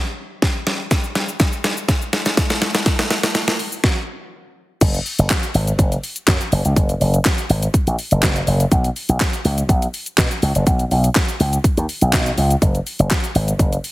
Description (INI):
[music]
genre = dance-pop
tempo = 123 BPM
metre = 4/4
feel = straight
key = F# major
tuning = A4 = 440 Hz
[part]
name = pop drum kit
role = drums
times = 0.4-13.9 s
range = crash cymbal, handclaps, hi-hat, kick drum, shaker, snare drum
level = -18 LUFS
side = equal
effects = none
[part]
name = slap bass with an envelope filter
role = bass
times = 4.8-13.8 s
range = F#1 to B2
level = -17 LUFS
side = equal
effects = sidechain pumping
[sound]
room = light reverb, digital ambience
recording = heavily compressed radio sound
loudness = -16 LUFS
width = side -18 dB against mid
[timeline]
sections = 0.0-4.8 A section; 4.8-13.9 B section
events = build-up 0.0-4.8; drum fill 0.0-3.8; stop 3.8-4.8; drop 4.8-13.9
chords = none